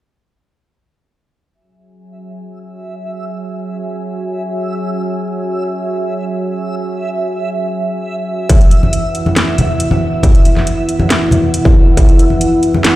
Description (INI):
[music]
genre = deep dubstep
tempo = 138 BPM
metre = 4/4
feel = half-time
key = unclear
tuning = A4 = 440 Hz
[part]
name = dark analog pad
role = sustained chords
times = 1.5-13.0 s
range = E4 to G#5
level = -18 LUFS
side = equal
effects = chorus
[part]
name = backwards swelling texture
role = texture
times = 2.8-13.0 s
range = E5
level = -24 LUFS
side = right 2 dB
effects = built-in reverb
[part]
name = electronic kick drum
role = drums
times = 8.5-12.1 s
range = none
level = -8 LUFS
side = equal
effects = distortion
[part]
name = garage drum kit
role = drums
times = 8.5-12.9 s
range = hi-hat, snare drum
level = -18 LUFS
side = equal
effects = none
[part]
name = congas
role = percussion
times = 8.5-12.8 s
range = none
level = -16 LUFS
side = equal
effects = none
[sound]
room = little or no reverb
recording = played on a big sound system in a bare room, large studio reverb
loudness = -12 LUFS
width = side -16 dB against mid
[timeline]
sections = 1.5-13.0 A section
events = filter sweep on analog synth pad 1.5-13.0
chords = 1.5 F#5; 8.5 Esus2